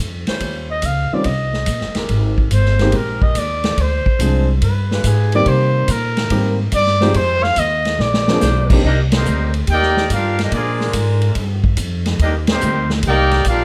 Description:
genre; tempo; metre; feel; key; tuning
jazz, big band swing; 143 BPM; 4/4; swing 68% on 8ths; Eb major, C minor from 8.8 s; A4 = 440 Hz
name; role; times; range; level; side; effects
upright bass; bass; 0.0-13.6 s; Eb1 to C3; -20 LUFS; equal; none
clear saxophone section; sustained chords; 0.3-11.7 s; G3 to D5; -30 LUFS; equal; none
swinging big-band drum kit; drums; 0.3-13.6 s; crash cymbal, hi-hat, kick drum, ride cymbal, snare drum; -24 LUFS; equal; none
mellow trumpet; melody; 0.7-8.7 s; Ab4 to F5; -22 LUFS; equal; none
warm grand piano; accompaniment; 1.1-8.8 s; Eb3 to Ab4; -23 LUFS; equal; none
warm trombone section; second line; 8.8-13.6 s; Eb3 to G4; -26 LUFS; equal; none
clear trumpet section; melody; 8.9-13.6 s; Bb3 to G5; -22 LUFS; equal; none
room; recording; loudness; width
light reverb; dark, warm production; -17 LUFS; mono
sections
0.0-8.8 A section; 8.8-13.6 B section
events
trumpet solo 0.0-8.8; drum fill 8.0-8.4; band accent 9.0, 12.4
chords
0.4 Eb13; 2.1 Abmaj9; 3.8 Dm7b5; 4.6 G7b9; 5.5 Cm7; 7.2 Fm7; 8.0 Bb9; 8.8 Cm9; 10.5 Bb7; 12.2 Ebmaj7

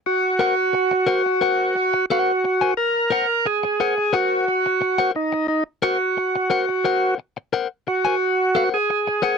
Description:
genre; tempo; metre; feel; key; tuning
funk; 88 BPM; 4/4; straight; unclear; A4 = 441 Hz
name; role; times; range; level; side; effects
overdriven tonewheel organ; melody; 0.1-9.4 s; Eb4 to Bb4; -19 LUFS; right 2 dB; slow rotary speaker
clean electric guitar; accompaniment; 0.4-9.4 s; Bb4 to Ab5; -22 LUFS; left 7 dB; none
room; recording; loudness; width
light reverb; dry, close 1970s-style studio recording; -18 LUFS; side -5 dB against mid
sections
0.0-9.4 A section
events
none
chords
0.0 Ab9

